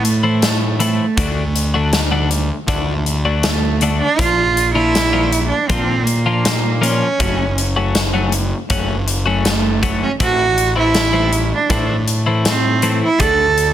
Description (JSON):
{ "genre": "quiet-loud alternative rock", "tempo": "80 BPM", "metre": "4/4", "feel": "straight", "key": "A dorian", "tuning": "A4 = 440 Hz", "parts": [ { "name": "rich cello", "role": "melody", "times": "0.0-13.7 s", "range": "A3 to A4", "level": "-17 LUFS", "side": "right 4 dB", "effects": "digital delay" }, { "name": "fuzz picked electric bass", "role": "bass", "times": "0.0-13.7 s", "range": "F#1 to Bb2", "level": "-19 LUFS", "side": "equal", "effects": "overdrive" }, { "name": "big rock drum kit", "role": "drums", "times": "0.0-13.7 s", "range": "hi-hat, kick drum, snare drum", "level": "-20 LUFS", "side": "left 1 dB", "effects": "none" }, { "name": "twelve-string electric guitar", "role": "arpeggios", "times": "0.2-13.5 s", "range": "D3 to F#4", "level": "-20 LUFS", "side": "left 4 dB", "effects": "none" } ], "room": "light reverb, studio ambience", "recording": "dense, heavily limited modern master", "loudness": "-14 LUFS", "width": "side -11 dB against mid", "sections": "0.0-13.7 A section", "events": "none", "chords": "0.0 Am; 1.2 D; 4.2 Bb; 7.2 F#m; 10.2 Am; 13.2 D", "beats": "0.43 | 1.18 1.93 2.69 3.44 | 4.19 4.95 5.70 6.45 | 7.20 7.96 8.71 9.46 | 10.21 10.96 11.71 12.46 | 13.21" }